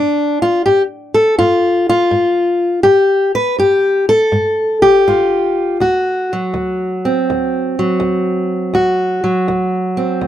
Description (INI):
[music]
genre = acoustic country blues, solo or duo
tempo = 82 BPM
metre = 4/4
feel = swing 68% on 8ths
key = D mixolydian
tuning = A4 = 439 Hz
[part]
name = fingerpicked steel-string acoustic guitar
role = solo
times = 0.0-10.3 s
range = D2 to B4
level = -12 LUFS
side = equal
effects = none
[sound]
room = little or no reverb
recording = dry, close 1970s-style studio recording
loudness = -12 LUFS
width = side -11 dB against mid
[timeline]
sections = 0.0-10.3 A section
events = none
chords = 0.0 N.C.; 5.8 D7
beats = 0.67 1.41 2.14 | 2.88 3.61 4.34 5.08 | 5.81 6.54 7.28 8.01 | 8.74 9.47 10.21